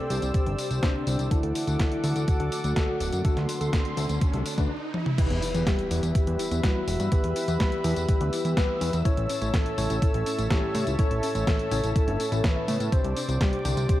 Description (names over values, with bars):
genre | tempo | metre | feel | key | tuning
italo disco | 124 BPM | 4/4 | straight | E minor | A4 = 440 Hz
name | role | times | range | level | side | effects
soft octave-layered synth lead | melody | 0.0-14.0 s | D4 to C#5 | -32 LUFS | left 1 dB | chorus, tremolo, vintage 12-bit sampler grit, ping-pong delay
warm analog pad | sustained chords | 0.0-14.0 s | A4 to E6 | -34 LUFS | equal | chorus
tine electric piano | stabs | 0.0-14.0 s | A2 to E5 | -33 LUFS | left 2 dB | medium stereo tremolo
fat analog bass | bass | 0.1-13.9 s | D1 to A2 | -27 LUFS | equal | tube saturation
clean 12-bit digital drum machine | drums | 0.1-14.0 s | crash cymbal, hi-hat, snare drum, tambourine, toms | -33 LUFS | equal | overdrive
electronic kick drum | drums | 0.3-14.0 s | none | -24 LUFS | equal | overdrive
riser and impact | sound effects | 3.1-7.1 s | none | -37 LUFS | right 1 dB | none
soft round pluck | arpeggios | 5.2-14.0 s | C#3 to G4 | -36 LUFS | right 1 dB | analog chorus
room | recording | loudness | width
light reverb, digital ambience | dark, warm production, vinyl crackle | -23 LUFS | side -14 dB against mid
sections
0.0-5.2 A section; 5.2-14.0 B section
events
riser 3.1-5.2; stop 4.7-5.2; drum fill 4.9; impact 5.2-7.1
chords
0.0 Csus2; 1.3 D; 5.2 Em; 9.1 A; 12.9 Csus2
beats
0.34 0.83 | 1.31 1.79 2.28 2.76 | 3.25 3.73 4.21 4.70 | 5.18 5.67 6.15 6.63 | 7.12 7.60 8.09 8.57 | 9.05 9.54 10.02 10.51 | 10.99 11.47 11.96 12.44 | 12.92 13.41 13.89